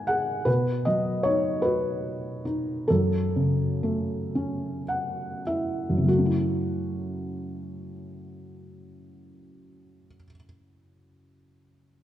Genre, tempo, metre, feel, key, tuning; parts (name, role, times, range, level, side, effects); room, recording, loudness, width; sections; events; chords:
classical, lyrical solo piano; 31-52 BPM (dotted quarters); 6/8; rubato; F# dorian; A4 = 440 Hz
felt-muted upright piano; solo; 0.0-12.0 s; F#2 to G#5; -24 LUFS; equal
moderate concert hall reverb, RT60 1.9 s; dark, warm production; -24 LUFS; side -12 dB against mid
0.0-6.1 A section; 6.1-9.8 B section
slowing down 0.5-6.1; felt piano fill 4.3-6.1
0.5 B; 2.9 F#m7